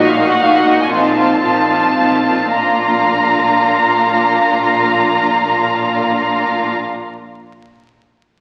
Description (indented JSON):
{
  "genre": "quick classical-period movement for symphony orchestra",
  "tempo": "104-128 BPM",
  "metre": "3/4",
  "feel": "straight",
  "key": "unclear",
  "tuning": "A4 = 440 Hz",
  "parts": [
    { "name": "warm studio violin section", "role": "melody", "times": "0.0-6.7 s", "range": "F5 to Bb5", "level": "-18 LUFS", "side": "equal", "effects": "none" },
    { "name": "rich studio violin section", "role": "second line", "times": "0.0-6.7 s", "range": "F4 to F5", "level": "-20 LUFS", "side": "equal", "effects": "none" },
    { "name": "warm studio viola section", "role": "accompaniment", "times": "0.0-6.7 s", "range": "Bb3 to Eb4", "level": "-21 LUFS", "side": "equal", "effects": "none" },
    { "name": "rich symphonic double bass section", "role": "bass", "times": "0.0-6.7 s", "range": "Bb1", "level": "-34 LUFS", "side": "equal", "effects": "none" },
    { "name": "warm studio cello section", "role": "bass", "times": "0.0-6.7 s", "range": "Bb2", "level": "-27 LUFS", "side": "equal", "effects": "none" }
  ],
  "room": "wet scoring stage reverb, RT60 1.6 s",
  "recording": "very old 78 rpm record, vinyl crackle",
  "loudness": "-14 LUFS",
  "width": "mono",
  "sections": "0.0-2.5 A section; 2.5-6.0 B section",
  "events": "slowing down 0.0-2.5",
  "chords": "0.0 Ebm/Bb; 0.9 F7/Bb; 2.5 Bb",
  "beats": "0.42 | 0.92 1.43 1.97 | 2.55 3.12 3.68 | 4.25 4.81 5.38"
}